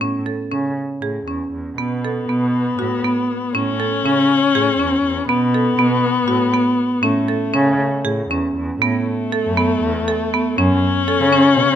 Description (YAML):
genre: contemporary instrumental, chamber music in an uneven meter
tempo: 239 BPM (eighths)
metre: 7/8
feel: straight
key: A major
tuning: A4 = 440 Hz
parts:
  - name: marimba with hard mallets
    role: arpeggios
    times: 0.0-11.7 s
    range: B3 to A4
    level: -20 LUFS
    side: right 4 dB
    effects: none
  - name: muted cello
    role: bass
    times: 0.0-11.8 s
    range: E2 to C#3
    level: -22 LUFS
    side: equal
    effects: none
  - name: warm viola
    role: second line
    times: 1.8-11.8 s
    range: A3 to C#4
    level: -18 LUFS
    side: left 5 dB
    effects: none
room: light reverb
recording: close, detailed microphones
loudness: -16 LUFS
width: side -9 dB against mid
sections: 0.0-8.8 A section; 8.8-11.8 B section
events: none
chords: 0.0 A; 1.8 B5; 3.5 A; 5.3 B5; 7.0 A; 8.8 Asus2; 10.6 F#m